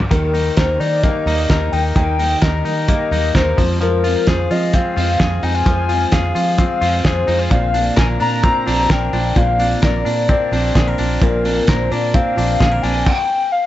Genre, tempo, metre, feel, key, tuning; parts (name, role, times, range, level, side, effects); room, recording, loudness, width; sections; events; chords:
jangly indie pop; 130 BPM; 4/4; straight; Eb major; A4 = 440 Hz
cloth-damped thuddy drum kit; drums; 0.0-13.2 s; crash cymbal, hi-hat, kick drum, snare drum, toms; -18 LUFS; equal
warbly nostalgic lead; melody; 0.1-13.7 s; Bb4 to Bb5; -19 LUFS; left 2 dB; chorus, plate reverb, tape echo
picked steel-string acoustic guitar; accompaniment; 0.1-13.1 s; Bb2 to F4; -26 LUFS; right 7 dB; plate reverb
direct-recorded clean electric guitar; arpeggios; 0.1-13.1 s; Bb2 to Bb4; -22 LUFS; left 4 dB; plate reverb
vintage muted fingered electric bass; bass; 0.1-13.0 s; Bb1 to F3; -20 LUFS; equal
light reverb; nothing above 7.8 kHz; -14 LUFS; side -14 dB against mid
0.1-13.7 A section
0.1 Eb; 3.6 Fm; 7.5 Bbadd9